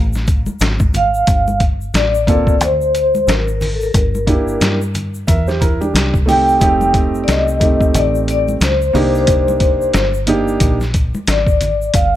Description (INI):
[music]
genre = hip hop, jazz-hop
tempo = 90 BPM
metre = 4/4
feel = swing 60% on 16ths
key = G minor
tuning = A4 = 442 Hz
[part]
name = deep dub fingered electric bass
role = bass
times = 0.0-12.2 s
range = F1 to G2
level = -19 LUFS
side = equal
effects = none
[part]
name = tube shaker and congas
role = percussion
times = 0.1-12.1 s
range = none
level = -27 LUFS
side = left 1 dB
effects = none
[part]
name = trip hop sampler-style drum kit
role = drums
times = 0.2-12.1 s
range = hi-hat, kick drum, snare drum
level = -16 LUFS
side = equal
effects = none
[part]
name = vibraphone with soft mallets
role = melody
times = 1.0-12.2 s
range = A4 to G5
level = -16 LUFS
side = left 1 dB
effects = none
[part]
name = warm concert grand piano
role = accompaniment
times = 2.3-10.8 s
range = A3 to E5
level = -18 LUFS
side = right 3 dB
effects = none
[sound]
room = small room ambience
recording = none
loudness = -12 LUFS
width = side -13 dB against mid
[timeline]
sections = 0.0-1.3 A section; 1.3-12.2 B section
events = none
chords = 0.0 G7sus2 (rootless); 1.3 Gmadd9; 3.9 Gm6; 5.9 Cm; 6.6 F9; 8.9 Cm9